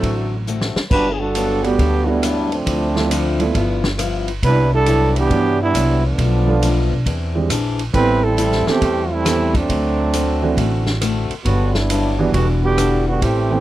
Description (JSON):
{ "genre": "jazz, big band swing", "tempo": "136 BPM", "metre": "4/4", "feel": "swing 66% on 8ths", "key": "G major", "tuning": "A4 = 440 Hz", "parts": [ { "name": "mellow saxophone section", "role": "melody", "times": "0.0-0.5 s", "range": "D3 to F#4", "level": "-27 LUFS", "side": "left 2 dB", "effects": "none" }, { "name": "picked steel-string acoustic guitar", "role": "accompaniment", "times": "0.0-13.5 s", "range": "G2 to G#4", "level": "-25 LUFS", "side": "left 6 dB", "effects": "none" }, { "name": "warm baby grand piano", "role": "accompaniment", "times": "0.0-13.6 s", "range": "E3 to A4", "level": "-22 LUFS", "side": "right 4 dB", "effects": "none" }, { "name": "upright bass", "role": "bass", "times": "0.0-13.6 s", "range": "E1 to B2", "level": "-20 LUFS", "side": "equal", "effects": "none" }, { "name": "vintage drum kit", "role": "drums", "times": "0.0-13.4 s", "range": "crash cymbal, hi-hat, kick drum, ride cymbal, rim click, snare drum", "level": "-24 LUFS", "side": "equal", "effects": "none" }, { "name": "warm trombone section", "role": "second line", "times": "0.9-13.6 s", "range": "D3 to B4", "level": "-19 LUFS", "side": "right 2 dB", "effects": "none" } ], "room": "light reverb", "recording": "dry, close 1970s-style studio recording", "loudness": "-15 LUFS", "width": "side -14 dB against mid", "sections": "0.9-13.6 A section", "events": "drum fill 0.5-0.9; trombone section solo 0.9-13.6", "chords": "0.0 D7; 0.9 Gmaj7; 2.7 Dm9; 3.5 G13; 4.4 Cmaj9#11; 6.2 Bm7b5; 7.1 E7alt; 7.9 Am7; 9.7 D7; 11.5 Gmaj7; 12.3 Em9" }